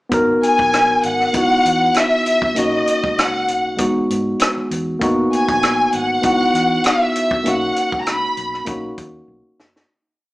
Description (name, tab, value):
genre	lush 1970s-style soul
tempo	98 BPM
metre	4/4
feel	swing 54% on 16ths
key	B major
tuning	A4 = 439 Hz
part	tine electric piano	accompaniment	0.1-9.9 s	G#3 to A#4	-19 LUFS	equal	none
part	vintage muted fingered electric bass	bass	0.1-9.8 s	F#1 to G#2	-32 LUFS	equal	none
part	compact cocktail drum kit	drums	0.1-9.9 s	hi-hat, kick drum, rim click, snare drum	-22 LUFS	equal	none
part	warm studio violin section	melody	0.4-8.7 s	D#5 to B5	-17 LUFS	equal	none
room	wet large studio reverb, RT60 0.8 s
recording	band playing live in one room, small speaker sound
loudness	-15 LUFS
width	side -18 dB against mid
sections	0.1-9.9 A section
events	fade-out 7.5-9.9; drum fill 9.3-9.9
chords	0.1 G#m7; 1.3 C#m11; 2.6 Bmaj7; 3.8 Emaj7; 5.0 G#m7; 6.2 C#m11; 7.5 Bmaj7